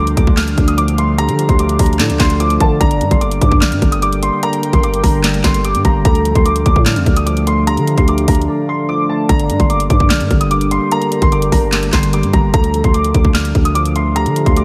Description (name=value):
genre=hip hop, trap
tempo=148 BPM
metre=4/4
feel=half-time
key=G minor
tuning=A4 = 440 Hz
part: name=warm concert grand piano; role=melody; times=0.0-14.6 s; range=A5 to F6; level=-22 LUFS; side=equal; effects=analog chorus, analog delay
part: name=soft octave-layered synth lead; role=second line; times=0.0-14.6 s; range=G4 to D5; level=-26 LUFS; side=equal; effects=chorus, tremolo, analog delay
part: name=tine electric piano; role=accompaniment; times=0.0-14.6 s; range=D3 to D5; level=-22 LUFS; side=equal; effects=none
part: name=deep dark ambient pad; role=sustained chords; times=0.0-14.6 s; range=D3 to G5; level=-27 LUFS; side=equal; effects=chorus, built-in reverb
part: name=growling 808-style bass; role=bass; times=0.0-14.6 s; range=G1 to D3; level=-19 LUFS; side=equal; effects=none
part: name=trap drum kit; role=drums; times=0.1-14.6 s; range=handclaps, hi-hat, kick drum, snare drum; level=-17 LUFS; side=equal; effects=none
room=moderate lush hall reverb, RT60 1.9 s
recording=dreamy mix soaked in reverb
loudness=-14 LUFS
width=mono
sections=0.0-9.3 A section; 9.3-14.6 A section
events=break 8.5-9.3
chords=0.0 Dm; 2.8 Gm; 6.1 Dm; 9.3 Gm; 12.5 Dm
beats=0.38 0.78 | 1.19 1.59 2.00 2.40 | 2.81 3.21 3.62 4.02 | 4.43 4.83 5.24 5.64 | 6.05 6.46 6.86 7.27 | 7.67 8.08 8.48 8.89 | 9.29 9.70 10.11 10.51 | 10.92 11.32 11.73 12.13 | 12.54 12.94 13.35 13.75 | 14.16 14.56